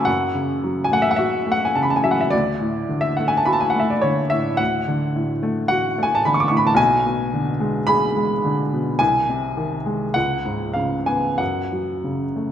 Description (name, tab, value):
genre	classical, romantic nocturne for solo piano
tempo	46-56 BPM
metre	4/4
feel	rubato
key	F# minor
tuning	A4 = 441 Hz
part	clear upright piano	solo	0.0-12.5 s	B1 to D6	-18 LUFS	equal	none
room	wet concert hall reverb, RT60 1.9 s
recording	none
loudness	-18 LUFS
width	side -9 dB against mid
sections	0.0-12.5 A section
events	none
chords	0.0 F#m; 2.3 D; 6.8 G#dim/B; 9.0 G#/B#; 10.2 C#5; 11.4 F#m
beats	0.07 1.20 | 2.32 3.47 4.60 5.71 | 6.78 7.88 9.00 10.15 | 11.40